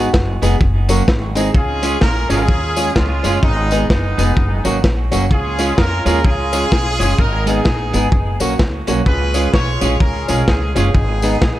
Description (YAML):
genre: ska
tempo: 128 BPM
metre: 4/4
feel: swing 60% on 8ths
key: Db mixolydian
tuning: A4 = 440 Hz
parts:
  - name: clean electric guitar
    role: accompaniment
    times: 0.0-11.5 s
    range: Gb3 to Ab4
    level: -22 LUFS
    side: right 5 dB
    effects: tape echo
  - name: dark upright piano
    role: stabs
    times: 0.0-11.3 s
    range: Bb3 to Db5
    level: -24 LUFS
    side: left 3 dB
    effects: none
  - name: upright bass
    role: bass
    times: 0.0-11.6 s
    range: F1 to F2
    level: -19 LUFS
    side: equal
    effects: none
  - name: crunchy breakbeat drum kit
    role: drums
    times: 0.1-11.5 s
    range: hi-hat, kick drum, snare drum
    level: -17 LUFS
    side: equal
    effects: tape echo
  - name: tambourine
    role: percussion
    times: 0.4-11.3 s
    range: none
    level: -29 LUFS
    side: left 7 dB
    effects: none
  - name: clear horn section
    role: melody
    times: 1.5-11.6 s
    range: Ab3 to Db5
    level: -21 LUFS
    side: right 1 dB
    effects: tape echo
room: light reverb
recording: none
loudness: -13 LUFS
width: side -14 dB against mid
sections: 0.0-1.5 A section; 1.5-11.6 B section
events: none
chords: 0.0 Abm; 0.6 Gb; 1.1 Ab; 1.5 Db; 3.4 Abm; 4.4 Gb; 5.3 Db; 7.2 Abm; 8.1 Gb; 9.1 Db; 10.9 Abm